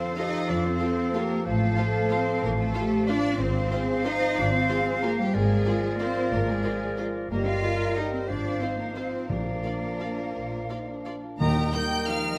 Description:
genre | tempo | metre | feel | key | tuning
classical, orchestral ballroom waltz | 164-200 BPM | 3/4 | rubato | Eb major from 3.4 s | A4 = 435 Hz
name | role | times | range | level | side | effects
bright clarinet | second line | 0.0-12.4 s | Eb4 to D5 | -39 LUFS | equal | none
bright silver concert flute | second line | 0.0-12.4 s | D5 to G5 | -36 LUFS | equal | none
rich studio violin section | second line | 0.0-12.4 s | G4 to G5 | -39 LUFS | equal | none
warm bassoon | accompaniment | 0.0-12.4 s | Eb3 to G3 | -39 LUFS | equal | none
mellow French horn section | sustained chords | 0.0-12.4 s | D4 to C5 | -35 LUFS | equal | none
concert harp | arpeggios | 0.0-12.4 s | G2 to A5 | -37 LUFS | equal | none
rich studio cello section | bass | 0.0-12.4 s | Bb2 to F4 | -32 LUFS | equal | none
rich studio violin section | melody | 0.2-12.4 s | D5 to G6 | -38 LUFS | equal | none
rich studio viola section | accompaniment | 0.2-12.2 s | Eb4 to D5 | -41 LUFS | equal | none
rich studio double bass section | bass | 0.5-11.7 s | G1 to F2 | -34 LUFS | equal | none
timpani | percussion | 9.3-11.9 s | Bb2 to Eb3 | -33 LUFS | equal | none
clear oboe | second line | 11.4-12.4 s | Eb5 | -38 LUFS | equal | none
mellow trombone section | sustained chords | 11.4-12.4 s | Eb3 to G3 | -41 LUFS | equal | none
warm tuba | bass | 11.4-11.7 s | Eb2 | -35 LUFS | equal | none
room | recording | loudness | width
moderate scoring stage reverb, RT60 1.8 s | none | -26 LUFS | mono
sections
0.0-11.4 A section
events
none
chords
0.0 F; 1.5 F/A; 3.4 Fm/Ab; 5.3 Bb7/Ab; 7.3 Eb/G; 8.3 Fm/Ab; 9.3 Bb; 11.4 Eb

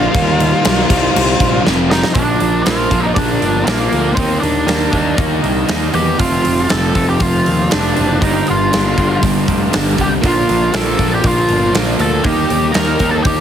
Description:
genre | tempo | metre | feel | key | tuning
quiet-loud alternative rock | 119 BPM | 4/4 | straight | unclear | A4 = 440 Hz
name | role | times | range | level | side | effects
octave-fuzz lead guitar | melody | 0.0-13.4 s | Bb3 to Bb5 | -18 LUFS | equal | distortion, digital delay
overdriven semi-hollow guitar | riff | 0.0-13.4 s | F2 to Eb4 | -17 LUFS | left 2 dB | none
fuzz picked electric bass | bass | 0.0-13.4 s | F1 to E2 | -19 LUFS | equal | overdrive
huge arena drum kit | drums | 0.1-13.4 s | crash cymbal, hi-hat, kick drum, snare drum | -18 LUFS | equal | none
twangy electric guitar | arpeggios | 2.2-13.4 s | F2 to Eb4 | -23 LUFS | right 6 dB | wide subtle chorus
room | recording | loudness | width
light reverb | heavily compressed radio sound | -12 LUFS | side -9 dB against mid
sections
0.0-2.2 A section; 2.2-13.4 B section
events
drum fill 1.6-2.2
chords
0.1 Eb; 0.9 Cm; 1.6 F; 2.2 Bb; 4.2 Eb; 6.2 F; 8.2 Gm; 10.2 Bb; 12.3 Eb

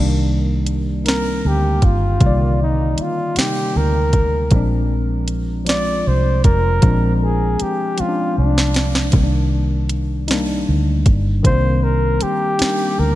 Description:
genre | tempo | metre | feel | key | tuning
slow six-eight R&B | 52 BPM (dotted quarters) | 6/8 | straight | C minor | A4 = 440 Hz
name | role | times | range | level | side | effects
tine electric piano | accompaniment | 0.0-13.2 s | C3 to D5 | -22 LUFS | left 2 dB | analog chorus
vintage muted fingered electric bass | bass | 0.0-13.2 s | F1 to D2 | -18 LUFS | equal | none
smooth R&B drum kit | drums | 0.7-12.8 s | hi-hat, kick drum, snare drum | -18 LUFS | equal | vintage 12-bit sampler grit
breathy flugelhorn | melody | 1.1-13.2 s | D4 to D5 | -22 LUFS | equal | none
room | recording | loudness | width
light reverb, digital ambience | bright 1980s-style digital production | -15 LUFS | side -15 dB against mid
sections
0.0-13.2 A section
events
flugelhorn solo 0.0-13.2; drum fill 8.0-9.1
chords
0.0 Cm9; 4.5 Bb7; 9.1 Cm9

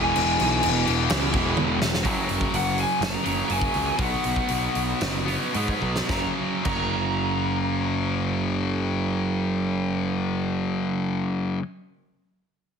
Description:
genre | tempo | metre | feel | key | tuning
hard rock | 107-127 BPM | 4/4 | straight | F# mixolydian | A4 = 441 Hz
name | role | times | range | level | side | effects
lead guitar through a small cranked amp | melody | 0.0-11.3 s | F#5 to A#5 | -28 LUFS | left 1 dB | overdrive
biting overdriven guitar | riff | 0.0-11.6 s | E2 to B3 | -29 LUFS | right 12 dB | none
high-gain distorted guitar | riff | 0.0-11.6 s | E2 to B3 | -28 LUFS | left 10 dB | distortion
fuzz picked electric bass | bass | 0.0-11.6 s | E1 to G#2 | -28 LUFS | equal | overdrive
huge arena drum kit | drums | 0.2-6.8 s | crash cymbal, hi-hat, kick drum, snare drum, toms | -28 LUFS | equal | none
room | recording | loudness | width
light reverb, studio reverb | heavily compressed radio sound, multiband compression | -22 LUFS | side -6 dB against mid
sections
0.0-2.0 A section; 2.0-6.1 B section; 6.1-10.6 C section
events
drum fill 1.6-2.0, 5.8; slowing down 2.0-6.1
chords
0.0 E; 2.0 F#; 4.0 B5; 6.1 F#

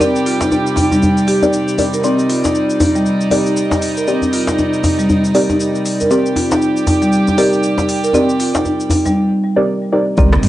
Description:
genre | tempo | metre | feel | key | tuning
afro house | 118 BPM | 4/4 | swing 59% on 16ths | C minor | A4 = 440 Hz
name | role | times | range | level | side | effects
warm chamber string section | sustained chords | 0.0-10.5 s | C3 to D5 | -21 LUFS | right 1 dB | sidechain pumping, cassette tape
marimba with soft mallets | arpeggios | 0.0-10.3 s | G3 to Bb4 | -15 LUFS | equal | vintage 12-bit sampler grit, sidechain pumping, low-pass filter, cassette tape, tape echo
deep mellow chord stab | stabs | 0.0-10.5 s | C4 to D5 | -18 LUFS | left 1 dB | chorus, sidechain pumping, cassette tape, tape echo
afro-pop drum kit | drums | 0.0-10.5 s | hi-hat, rim click, shaker, toms | -24 LUFS | left 1 dB | small room reverb, cassette tape
djembe | percussion | 0.0-9.1 s | none | -19 LUFS | left 1 dB | none
warm sub bass | bass | 10.2-10.4 s | C2 | -13 LUFS | equal | sidechain pumping
electronic kick drum | drums | 10.2-10.3 s | none | -14 LUFS | equal | small room reverb, cassette tape
congas | percussion | 10.2-10.5 s | none | -17 LUFS | right 2 dB | none
room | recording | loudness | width
moderate studio reverb, RT60 0.5 s | home recording on cassette, nothing above 10.8 kHz | -12 LUFS | side -14 dB against mid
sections
0.0-10.2 A section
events
filter sweep on synth stab 0.0-10.2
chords
0.0 Cm9

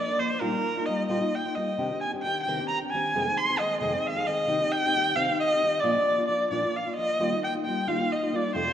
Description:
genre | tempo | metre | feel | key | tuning
mexican folk, mariachi | 88 BPM (dotted quarters) | 6/8 | straight | Eb major | A4 = 439 Hz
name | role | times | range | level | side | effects
rich erhu | melody | 0.0-8.7 s | Bb4 to C6 | -25 LUFS | equal | none
nylon-string guitar | accompaniment | 0.0-8.7 s | F2 to Bb4 | -30 LUFS | left 1 dB | none
room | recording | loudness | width
wet concert hall reverb, RT60 1.9 s | none | -24 LUFS | side -9 dB against mid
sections
0.0-8.7 A section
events
none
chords
0.4 Ebadd9/Bb; 1.8 Cmadd9; 3.1 Fm7; 4.5 Cm; 5.8 Bb; 7.2 Ebadd9

